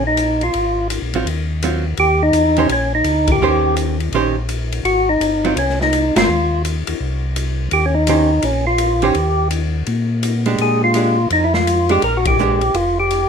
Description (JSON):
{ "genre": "soul jazz organ trio", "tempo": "167 BPM", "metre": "4/4", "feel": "swing 64% on 8ths", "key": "Eb mixolydian", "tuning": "A4 = 438 Hz", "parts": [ { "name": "percussive tonewheel organ", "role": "melody", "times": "0.0-13.3 s", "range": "Db4 to Bb4", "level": "-16 LUFS", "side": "equal", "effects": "slow rotary speaker, overdrive" }, { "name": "archtop guitar, miked and amplified", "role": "accompaniment", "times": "0.0-12.6 s", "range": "Eb3 to C5", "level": "-19 LUFS", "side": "right 6 dB", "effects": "none" }, { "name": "mellow tonewheel organ", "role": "bass", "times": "0.0-13.3 s", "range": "F1 to Bb2", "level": "-20 LUFS", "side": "equal", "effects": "slow rotary speaker" }, { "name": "open jazz drum kit", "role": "drums", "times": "0.2-13.2 s", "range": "hi-hat, kick drum, ride cymbal, snare drum", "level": "-24 LUFS", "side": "left 4 dB", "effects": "none" } ], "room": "moderate club reverb, RT60 0.5 s", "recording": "minimal, uncompressed stereo recording", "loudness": "-14 LUFS", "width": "side -6 dB against mid", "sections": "0.0-13.3 A section", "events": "band accent 3.2, 6.1, 12.2", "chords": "0.0 Eb5; 0.5 Ab13; 2.0 Eb6; 4.9 Ab6; 7.7 Eb9; 10.6 Bb13" }